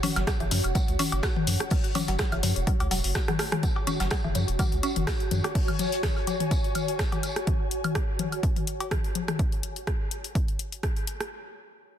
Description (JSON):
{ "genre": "minimal techno", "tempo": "125 BPM", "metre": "4/4", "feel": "swing 55% on 16ths", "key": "unclear", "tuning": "A4 = 444 Hz", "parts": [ { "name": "mallet-like synth pluck", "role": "riff", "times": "0.0-5.1 s", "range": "C#3 to F#4", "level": "-33 LUFS", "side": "equal", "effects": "chorus, sidechain pumping, ping-pong delay" }, { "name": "punchy analog drum machine", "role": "drums", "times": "0.0-11.3 s", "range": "hi-hat, rim click", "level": "-33 LUFS", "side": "equal", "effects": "soft clipping on snare" }, { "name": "vintage brush drum kit", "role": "drums", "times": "0.0-7.4 s", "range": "hi-hat, snare drum, tambourine", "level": "-39 LUFS", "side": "left 2 dB", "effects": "high-pass filter on hats, high-pass filter on snare, high-pass filter on perc, high-pass filter on room" }, { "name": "electronic toms, congas, woodblock and cowbell", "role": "percussion", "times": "0.0-9.4 s", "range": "none", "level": "-32 LUFS", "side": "left 6 dB", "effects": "overdrive" }, { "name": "ethereal airy pad", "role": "texture", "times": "0.0-9.4 s", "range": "F#4 to G#5", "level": "-34 LUFS", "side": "equal", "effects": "ensemble chorus, built-in reverb, sidechain pumping" }, { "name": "saturated sub bass", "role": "bass", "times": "0.2-5.4 s", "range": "E1 to F#2", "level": "-28 LUFS", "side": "equal", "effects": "sidechain pumping" }, { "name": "electronic kick drum", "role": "drums", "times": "0.3-10.9 s", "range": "none", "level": "-28 LUFS", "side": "equal", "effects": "none" } ], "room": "light reverb, small room ambience", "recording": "dense, heavily limited modern master", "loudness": "-24 LUFS", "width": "side -10 dB against mid", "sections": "0.0-3.6 A section; 3.6-11.3 B section", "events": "drop 0.0-3.6; drum fill 3.2-3.6", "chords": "0.0 F#5" }